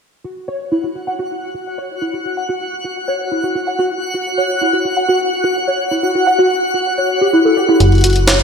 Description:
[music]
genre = IDM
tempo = 127 BPM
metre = 4/4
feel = straight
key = unclear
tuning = A4 = 440 Hz
[part]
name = warbly dusty pluck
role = arpeggios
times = 0.2-8.4 s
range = E4 to F#5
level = -16 LUFS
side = equal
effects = ensemble chorus, ping-pong delay
[part]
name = twinkling granular texture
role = texture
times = 1.1-8.4 s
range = F#4 to F#5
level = -19 LUFS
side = left 1 dB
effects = built-in reverb, lush chorus
[part]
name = metallic FM bass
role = bass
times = 7.8-8.4 s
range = F#1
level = -12 LUFS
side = equal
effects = none
[part]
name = jungle sampler-style drum kit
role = drums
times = 7.8-8.4 s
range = hi-hat, snare drum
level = -15 LUFS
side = equal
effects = studio reverb, gated reverb
[sound]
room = wet lush hall reverb, RT60 1.9 s, digital ambience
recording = bright 1980s-style digital production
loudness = -14 LUFS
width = side -6 dB against mid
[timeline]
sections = 0.2-8.4 A section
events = none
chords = 0.2 F#5; 3.8 N.C.; 7.8 F#5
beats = | 0.24 0.72 1.19 1.66 | 2.13 2.61 3.08 3.55 | 4.02 4.50 4.97 5.44 | 5.91 6.39 6.86 7.33 | 7.80 8.28

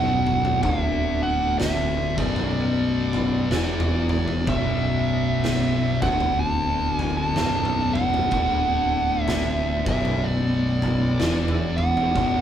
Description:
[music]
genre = stoner and doom metal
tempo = 62 BPM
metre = 4/4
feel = swing 61% on 8ths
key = B minor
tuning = A4 = 445 Hz
[part]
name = fuzz lead guitar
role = melody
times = 0.0-12.4 s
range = D5 to A5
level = -26 LUFS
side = right 3 dB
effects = distortion
[part]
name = metallic inharmonic drone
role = sustained chords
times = 0.2-12.4 s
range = B3 to D5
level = -34 LUFS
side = left 1 dB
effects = none
[part]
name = thick fuzz guitar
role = riff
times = 0.0-12.4 s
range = B1 to E3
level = -26 LUFS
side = left 5 dB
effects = distortion
[part]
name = thick fuzz guitar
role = riff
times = 0.0-12.4 s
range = B1 to E3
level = -30 LUFS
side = right 5 dB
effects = distortion
[part]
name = growling picked electric bass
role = bass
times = 0.0-12.4 s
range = B0 to E1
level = -28 LUFS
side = equal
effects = overdrive
[part]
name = oversized low-tuned drum kit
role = drums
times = 0.3-12.4 s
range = kick drum, snare drum, toms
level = -27 LUFS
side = right 1 dB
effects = none
[sound]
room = moderate large studio reverb, RT60 1.2 s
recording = band playing live in one room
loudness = -20 LUFS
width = side -10 dB against mid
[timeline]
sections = 0.0-12.4 A section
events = none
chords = 0.0 Bm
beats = | 0.63 1.59 2.55 3.51 | 4.47 5.43 6.40 7.36 | 8.32 9.28 10.24 11.20 | 12.16

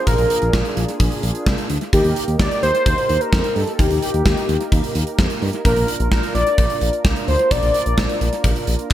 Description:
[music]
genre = synth-pop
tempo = 129 BPM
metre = 4/4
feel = straight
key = unclear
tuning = A4 = 440 Hz
[part]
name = warm velvety synth lead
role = melody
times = 0.0-8.4 s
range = G4 to D5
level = -20 LUFS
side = equal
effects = chorus, analog delay
[part]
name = analog synth brass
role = accompaniment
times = 0.0-8.9 s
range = Bb3 to Bb4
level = -27 LUFS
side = right 1 dB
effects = chorus, analog delay
[part]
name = smooth synth bass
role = bass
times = 0.1-8.9 s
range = Bb1 to G2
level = -21 LUFS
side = equal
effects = none
[part]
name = gated 80s drum kit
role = drums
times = 0.1-8.9 s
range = handclaps, hi-hat, kick drum, snare drum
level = -20 LUFS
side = equal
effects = none
[sound]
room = light reverb, small room ambience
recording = echo-heavy mix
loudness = -16 LUFS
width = side -12 dB against mid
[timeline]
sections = 0.0-8.9 A section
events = none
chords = 0.0 Bb7; 1.9 Eb; 5.7 Bb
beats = | 0.07 0.54 1.00 1.47 | 1.93 2.40 2.86 3.33 | 3.79 4.26 4.72 5.19 | 5.65 6.12 6.58 7.05 | 7.51 7.98 8.44 8.91

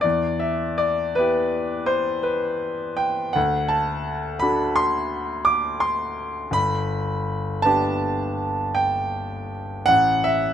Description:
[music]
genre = classical, romantic nocturne for solo piano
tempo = 55 BPM (dotted quarters)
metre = 9/8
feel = uneven beats, rubato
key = E minor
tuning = A4 = 440 Hz
[part]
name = clear grand piano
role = solo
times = 0.0-10.5 s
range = G1 to D6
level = -20 LUFS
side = equal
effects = none
[sound]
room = little or no reverb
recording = close, detailed microphones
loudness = -20 LUFS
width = side -9 dB against mid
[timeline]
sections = 0.0-10.5 A section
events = none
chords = 0.0 Em; 3.4 D; 6.6 G; 9.9 F#m/A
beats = | 0.04 1.18 2.25 | 3.36 4.43 5.48 | 6.56 7.65 8.78 | 9.89

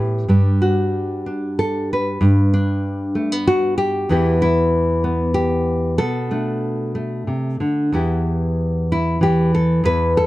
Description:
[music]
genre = folk, solo fingerstyle acoustic guitar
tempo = 95 BPM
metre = 3/4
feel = rubato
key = E minor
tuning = A4 = 440 Hz
[part]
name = nylon-string guitar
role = solo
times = 0.0-10.3 s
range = E2 to B4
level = -16 LUFS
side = equal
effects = none
[sound]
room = light reverb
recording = dark, warm production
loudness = -17 LUFS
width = side -17 dB against mid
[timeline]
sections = 0.0-7.9 A section; 7.9-10.3 B section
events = none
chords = 0.3 Gmaj7; 4.1 Em; 6.0 Bm7; 7.9 Em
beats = | 0.29 0.94 1.58 | 2.21 2.84 3.47 | 4.10 4.73 5.36 | 5.99 6.62 7.27 | 7.93 8.57 9.21 | 9.84

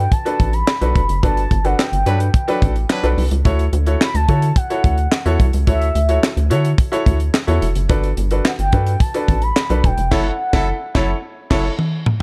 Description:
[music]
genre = early-eighties boogie funk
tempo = 108 BPM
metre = 4/4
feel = straight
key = unclear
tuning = A4 = 441 Hz
[part]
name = mellow horn-like synth lead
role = melody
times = 0.0-11.2 s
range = E5 to B5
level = -25 LUFS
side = equal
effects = chorus, slapback echo
[part]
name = bright baby grand piano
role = accompaniment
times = 0.0-11.7 s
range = D4 to E5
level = -25 LUFS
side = equal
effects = none
[part]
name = rubbery square bass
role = bass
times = 0.0-11.7 s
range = E1 to D3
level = -20 LUFS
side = equal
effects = none
[part]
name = tight funk drum kit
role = drums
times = 0.1-12.2 s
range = crash cymbal, handclaps, hi-hat, kick drum, snare drum, toms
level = -20 LUFS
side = equal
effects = none
[part]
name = clear horn section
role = second line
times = 2.1-3.1, 10.1-11.7 s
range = F#3 to B4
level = -29 LUFS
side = equal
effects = none
[sound]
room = studio reverb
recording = dark, warm production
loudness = -17 LUFS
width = mono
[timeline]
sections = 0.0-12.2 A section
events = band accent 1.2-3.5, 10.1-12.2; drum fill 11.8-12.2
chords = 0.0 Gmaj9; 3.5 Dmaj9; 7.9 Gmaj9; 10.1 F#m7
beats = 0.12 0.68 | 1.23 1.79 2.34 2.90 | 3.45 4.01 4.56 5.12 | 5.67 6.23 6.79 7.34 | 7.90 8.45 9.01 9.56 | 10.12 10.68 11.23 11.79

